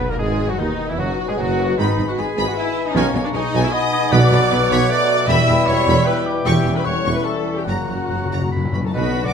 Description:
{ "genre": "classical", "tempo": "153 BPM", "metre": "3/4", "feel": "rubato", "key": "unclear", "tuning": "A4 = 440 Hz", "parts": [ { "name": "warm symphonic violin section", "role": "melody", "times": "0.0-9.3 s", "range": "D#4 to D6", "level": "-29 LUFS", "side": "left 2 dB", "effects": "none" }, { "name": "clear oboe", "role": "second line", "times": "0.0-9.3 s", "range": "D#4 to B5", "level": "-31 LUFS", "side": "right 2 dB", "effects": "none" }, { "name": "mellow concert flute", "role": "second line", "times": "0.0-9.3 s", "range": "D#4 to E6", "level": "-29 LUFS", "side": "left 3 dB", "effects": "none" }, { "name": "warm symphonic violin section", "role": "second line", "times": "0.0-9.3 s", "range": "A4 to E6", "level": "-30 LUFS", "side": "left 1 dB", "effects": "none" }, { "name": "mellow bassoon", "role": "accompaniment", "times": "0.0-9.3 s", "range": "B2 to B3", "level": "-28 LUFS", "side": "right 2 dB", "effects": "none" }, { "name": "warm symphonic viola section", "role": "accompaniment", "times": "0.0-9.3 s", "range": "B3 to E5", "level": "-24 LUFS", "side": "equal", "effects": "none" }, { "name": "clear trombone section", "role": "sustained chords", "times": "0.0-9.3 s", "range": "B2 to A#3", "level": "-29 LUFS", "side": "right 5 dB", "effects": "none" }, { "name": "mellow French horn section", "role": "sustained chords", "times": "0.0-9.3 s", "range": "D#3 to F#4", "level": "-28 LUFS", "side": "left 4 dB", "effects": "none" }, { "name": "concert harp", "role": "arpeggios", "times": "0.0-9.3 s", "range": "E2 to C#6", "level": "-26 LUFS", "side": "left 9 dB", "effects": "none" }, { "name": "mellow tuba", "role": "bass", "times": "0.0-9.2 s", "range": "E1 to D#2", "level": "-26 LUFS", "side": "right 5 dB", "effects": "none" }, { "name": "warm symphonic cello section", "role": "bass", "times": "0.0-9.3 s", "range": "D#2 to F#4", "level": "-24 LUFS", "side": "right 1 dB", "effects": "none" }, { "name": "warm symphonic double bass section", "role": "bass", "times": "0.0-9.3 s", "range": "E1 to D#2", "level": "-24 LUFS", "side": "right 3 dB", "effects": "none" }, { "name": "mellow trumpet section", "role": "stabs", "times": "0.1-9.3 s", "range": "C#4 to E5", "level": "-26 LUFS", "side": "equal", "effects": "none" }, { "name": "timpani", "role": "percussion", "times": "4.1-4.7, 7.7-9.3 s", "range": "F#2 to B2", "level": "-25 LUFS", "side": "left 1 dB", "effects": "none" } ], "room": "moderate recital hall reverb, RT60 1.4 s", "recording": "none", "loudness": "-16 LUFS", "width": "side -7 dB against mid", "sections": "0.0-8.9 A section", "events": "timpani fill 7.7-8.9", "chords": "0.0 B; 1.8 G#m; 3.0 G#m/B; 4.1 Bm; 5.3 Em; 6.5 C#dim/E; 7.7 F#" }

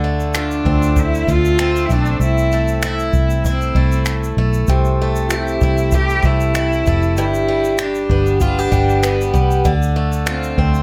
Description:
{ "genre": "acoustic pop", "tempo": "97 BPM", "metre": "4/4", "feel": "swing 55% on 16ths", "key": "C major", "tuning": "A4 = 440 Hz", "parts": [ { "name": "picked twelve-string acoustic guitar", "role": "accompaniment", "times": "0.0-10.8 s", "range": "G2 to G4", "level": "-22 LUFS", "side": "equal", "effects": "none" }, { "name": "vintage muted fingered electric bass", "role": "bass", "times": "0.0-10.8 s", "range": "F1 to D2", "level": "-20 LUFS", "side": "equal", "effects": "none" }, { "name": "jazz brush drum kit", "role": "drums", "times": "0.2-10.8 s", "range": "finger snaps, kick drum, shaker", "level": "-23 LUFS", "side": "equal", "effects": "none" }, { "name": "rich cello", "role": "melody", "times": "0.4-10.8 s", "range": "C4 to G4", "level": "-23 LUFS", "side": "equal", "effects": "none" } ], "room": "little or no reverb", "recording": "close, detailed microphones", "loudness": "-16 LUFS", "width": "mono", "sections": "0.0-10.8 A section", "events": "none", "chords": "0.0 Dm7; 2.2 Am/C; 4.7 C6; 7.2 G; 9.7 Dm7" }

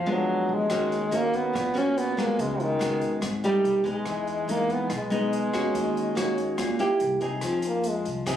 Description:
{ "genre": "bossa nova", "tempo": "143 BPM", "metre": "4/4", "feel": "straight", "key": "unclear", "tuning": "A4 = 442 Hz", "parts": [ { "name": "clear French horn", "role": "melody", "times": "0.0-8.1 s", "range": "D#3 to C#4", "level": "-26 LUFS", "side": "equal", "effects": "none" }, { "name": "nylon-string guitar", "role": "accompaniment", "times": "0.0-8.4 s", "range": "G#2 to G#4", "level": "-27 LUFS", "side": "left 1 dB", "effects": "none" }, { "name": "upright bass", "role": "bass", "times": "0.0-8.4 s", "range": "G#1 to E#2", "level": "-36 LUFS", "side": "right 2 dB", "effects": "none" }, { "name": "open jazz drum kit", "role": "drums", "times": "0.7-8.4 s", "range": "hi-hat, kick drum, rim click", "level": "-39 LUFS", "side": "left 1 dB", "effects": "none" } ], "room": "light reverb", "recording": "recorded on a phone in the room, studio reverb, compression", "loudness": "-23 LUFS", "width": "side -10 dB against mid", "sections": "0.0-7.4 A section", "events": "none", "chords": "0.0 A#7b9; 0.7 D#m7; 2.4 C#7sus4; 3.6 Baug7; 4.1 Emaj7; 5.7 D#m7; 7.0 C7; 7.4 Fm7" }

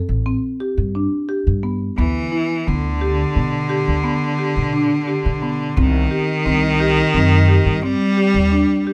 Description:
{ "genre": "contemporary instrumental, chamber music in an uneven meter", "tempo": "174 BPM (eighths)", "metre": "11/8", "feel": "straight", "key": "G major", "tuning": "A4 = 440 Hz", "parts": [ { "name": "marimba with medium mallets", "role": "arpeggios", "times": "0.0-8.9 s", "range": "B3 to A4", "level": "-24 LUFS", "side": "equal", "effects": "none" }, { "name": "upright bass", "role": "bass", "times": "0.1-8.6 s", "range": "A1 to B2", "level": "-22 LUFS", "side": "equal", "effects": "none" }, { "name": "bright cello", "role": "second line", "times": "2.0-8.9 s", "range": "D3 to G3", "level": "-21 LUFS", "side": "equal", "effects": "none" } ], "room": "light reverb", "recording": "none", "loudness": "-18 LUFS", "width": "mono", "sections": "0.0-8.9 A section", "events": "none", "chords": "0.0 D7sus4 (rootless); 2.0 G/D; 5.8 Cm" }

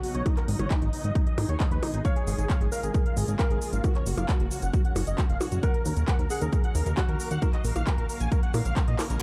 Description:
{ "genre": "uplifting trance", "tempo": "134 BPM", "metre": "4/4", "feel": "straight", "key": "unclear", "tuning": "A4 = 440 Hz", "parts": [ { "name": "dense compressed supersaw", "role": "melody", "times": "0.0-9.2 s", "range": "Eb4 to Ab5", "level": "-37 LUFS", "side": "equal", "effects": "sidechain pumping, low-pass filter, delay" }, { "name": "shimmering ambient pad", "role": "sustained chords", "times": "0.0-9.2 s", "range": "Bb2 to F5", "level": "-41 LUFS", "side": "equal", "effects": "chorus, built-in reverb, sidechain pumping" }, { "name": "techno drum kit", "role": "drums", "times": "0.0-9.2 s", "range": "handclaps, hi-hat, percussion blips, shaker", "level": "-37 LUFS", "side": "equal", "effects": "overdrive, low-pass filter on hats, small room ambience, low-pass filter on snare, low-pass filter on perc" }, { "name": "plucky analog bass", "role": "bass", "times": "0.1-9.2 s", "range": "Gb1 to Bb2", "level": "-30 LUFS", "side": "equal", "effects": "sidechain pumping" }, { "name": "electronic kick drum", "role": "drums", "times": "0.3-8.9 s", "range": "none", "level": "-28 LUFS", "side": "equal", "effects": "overdrive, small room ambience" }, { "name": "dark grand piano", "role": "second line", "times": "2.0-9.1 s", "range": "Gb4 to Db5", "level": "-40 LUFS", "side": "equal", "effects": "delay" } ], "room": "little or no reverb", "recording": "dark, warm production", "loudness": "-26 LUFS", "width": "mono", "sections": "0.0-9.2 A section", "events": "filter sweep on ambient pad 0.0-9.2; drum fill 9.0; band accent 9.0", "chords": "0.3 Abm; 2.0 Db6/Ab; 3.8 Gb; 5.6 Ebmadd9; 7.4 Bbm7" }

